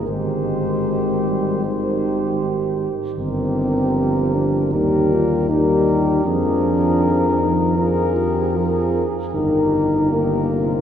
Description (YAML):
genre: classical, hymn-like piece for brass band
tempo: 78 BPM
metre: 4/4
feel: rubato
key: Eb major from 3.2 s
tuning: A4 = 436 Hz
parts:
  - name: mellow flugelhorn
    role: melody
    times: 0.0-10.8 s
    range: Bb4 to C5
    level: -25 LUFS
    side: left 4 dB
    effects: none
  - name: mellow French horn section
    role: second line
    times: 0.0-10.8 s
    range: F4 to Ab4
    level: -26 LUFS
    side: right 6 dB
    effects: none
  - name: mellow euphonium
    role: accompaniment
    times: 0.0-10.8 s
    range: Eb3 to G4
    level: -22 LUFS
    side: left 2 dB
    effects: none
  - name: mellow trombone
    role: accompaniment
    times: 0.0-10.8 s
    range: C3 to G3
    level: -27 LUFS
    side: right 2 dB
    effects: none
  - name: mellow tuba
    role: bass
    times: 0.0-10.8 s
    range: G1 to F2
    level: -22 LUFS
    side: equal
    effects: none
room: wet cathedral reverb, RT60 6.6 s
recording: heard from further back in the room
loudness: -17 LUFS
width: side -9 dB against mid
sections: 0.0-10.8 A section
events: none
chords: 0.1 Abmaj7; 3.2 Eb/G; 4.7 Eb; 6.3 Bb7/F; 9.3 Eb/G